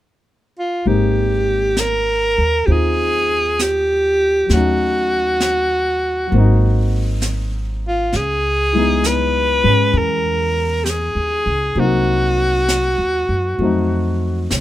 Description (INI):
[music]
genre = jazz ballad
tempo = 66 BPM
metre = 4/4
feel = swing 67% on 8ths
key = unclear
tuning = A4 = 440 Hz
[part]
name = clear alto saxophone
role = melody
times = 0.6-14.5 s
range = F4 to Cb5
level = -17 LUFS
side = equal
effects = none
[part]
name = dark baby grand piano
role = accompaniment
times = 0.9-14.6 s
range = Gb3 to F4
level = -22 LUFS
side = left 4 dB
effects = none
[part]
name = upright bass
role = bass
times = 0.9-14.6 s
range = Ab1 to Ab2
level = -20 LUFS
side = equal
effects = none
[part]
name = jazz brush drum kit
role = drums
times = 0.9-14.6 s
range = brushed snare drum, hi-hat, snare drum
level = -26 LUFS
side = equal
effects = none
[sound]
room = little or no reverb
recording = minimal, uncompressed stereo recording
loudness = -15 LUFS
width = side -14 dB against mid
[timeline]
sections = 0.9-14.6 A section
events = none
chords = 0.0 N.C.; 0.9 Abmaj7; 4.5 Ebm7b5; 6.3 Ab7; 8.1 Dbm9; 11.8 Cm7b5; 13.6 F7b9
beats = | 0.86 1.77 2.68 3.59 | 4.50 5.41 6.32 7.22 | 8.13 9.04 9.95 10.86 | 11.77 12.68 13.59 14.50